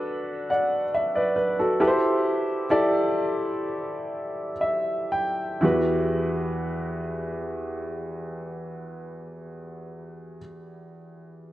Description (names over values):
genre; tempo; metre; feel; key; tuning
pop; 57-71 BPM; 4/4; straight; E minor; A4 = 439 Hz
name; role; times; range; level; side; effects
clear baby grand piano; accompaniment; 0.0-11.5 s; E2 to G5; -24 LUFS; equal; none
room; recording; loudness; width
moderate lush hall reverb, RT60 2.6 s; worn, warbling old tape, cassette tape, warbly pitch drift; -23 LUFS; side -15 dB against mid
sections
0.0-5.6 A section; 5.6-9.8 B section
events
slowing down 0.0-5.6; grand piano fill 4.1-5.6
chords
0.0 Bm7; 1.8 Am7; 5.6 Emadd9